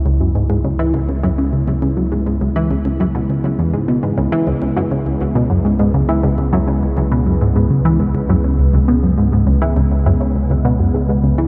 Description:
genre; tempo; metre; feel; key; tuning
ambient, sequencer-driven space music; 102 BPM; 4/4; straight; C# minor; A4 = 439 Hz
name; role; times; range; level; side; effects
sweeping resonant pad; sustained chords; 0.0-11.5 s; C#3 to E4; -23 LUFS; equal; chorus
warm sub bass; bass; 0.0-11.5 s; C#2; -22 LUFS; equal; none
tight sequenced synth; riff; 0.1-11.5 s; C#2 to E3; -18 LUFS; equal; chorus, phaser, delay
room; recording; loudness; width
moderate huge ambient reverb, RT60 7.5 s; dreamy mix soaked in reverb; -16 LUFS; mono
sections
0.0-11.5 A section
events
fade-in on analog synth pad 0.0-11.5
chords
0.0 C#m7

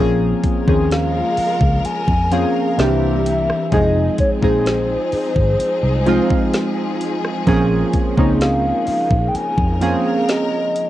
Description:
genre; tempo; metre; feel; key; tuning
contemporary R&B; 64 BPM; 4/4; straight; Bb minor; A4 = 440 Hz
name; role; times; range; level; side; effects
warm analog keys; accompaniment; 0.0-10.9 s; Eb3 to Ab4; -19 LUFS; equal; chorus
warm studio string section; sustained chords; 0.0-10.9 s; Db3 to Bb4; -27 LUFS; left 2 dB; sidechain pumping
vintage muted fingered electric bass; bass; 0.0-9.9 s; F1 to F2; -20 LUFS; equal; none
trap drum kit; drums; 0.4-10.9 s; hi-hat, kick drum, rim click, snare drum; -20 LUFS; equal; vintage 12-bit sampler grit, cassette tape
hollow clarinet-like synth lead; melody; 0.9-10.9 s; C5 to Ab5; -21 LUFS; equal; chorus
room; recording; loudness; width
light reverb; home recording on cassette; -15 LUFS; side -13 dB against mid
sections
0.0-10.9 A section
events
none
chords
0.0 Bbm7; 2.8 C7; 3.7 Fm7; 7.5 Bbm7

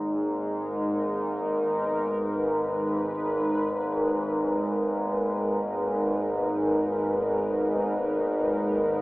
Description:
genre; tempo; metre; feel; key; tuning
dark ambient drone; free time; none; none; G# minor; A4 = 437 Hz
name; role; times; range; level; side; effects
sweeping resonant pad; sustained chords; 0.0-9.0 s; G#3 to B4; -26 LUFS; equal; chorus
overtone-sweeping drone; drone; 0.0-9.0 s; G#1 to G#2; -30 LUFS; equal; chorus, built-in reverb
room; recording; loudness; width
wet huge ambient reverb, RT60 8.4 s; dreamy mix soaked in reverb, AM radio sound; -24 LUFS; side -20 dB against mid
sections
0.0-9.0 A section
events
none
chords
0.0 G#madd9

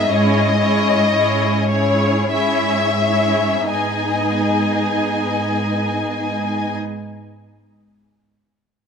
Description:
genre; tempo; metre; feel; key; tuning
classical, slow romantic movement for string orchestra; 40-64 BPM; 3/4; rubato; G# minor; A4 = 440 Hz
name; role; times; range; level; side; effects
warm symphonic violin section; melody; 0.0-6.8 s; C#5 to G#5; -20 LUFS; left 5 dB; none
warm symphonic violin section; second line; 0.0-6.8 s; G#4 to D#5; -24 LUFS; left 2 dB; none
warm chamber viola section; accompaniment; 0.0-6.8 s; B3 to E4; -23 LUFS; right 2 dB; none
rich symphonic cello section; bass; 0.1-6.8 s; G#2; -21 LUFS; right 2 dB; none
room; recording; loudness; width
light reverb; close, detailed microphones; -16 LUFS; side -6 dB against mid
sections
0.0-3.7 A section; 3.7-7.7 B section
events
slowing down 0.0-3.7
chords
0.1 C#m/G#; 3.7 G#m

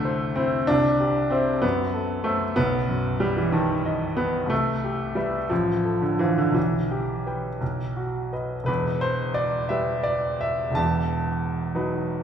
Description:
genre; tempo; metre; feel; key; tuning
classical, romantic character piece for solo piano; 55-66 BPM (dotted quarters); 6/8; rubato; E minor; A4 = 441 Hz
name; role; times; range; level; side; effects
clear baby grand piano; solo; 0.0-12.2 s; E1 to A5; -22 LUFS; equal; none
room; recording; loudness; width
wet recital hall reverb, RT60 1.8 s; heard from further back in the room; -22 LUFS; side -8 dB against mid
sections
0.0-8.7 A section; 8.7-12.2 B section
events
none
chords
0.0 Am/C; 0.7 C; 1.6 F#m7b5; 2.6 B7; 4.5 Cmaj7; 5.5 F/A; 6.6 Em/B; 7.6 B; 8.7 Em; 10.8 B7/E

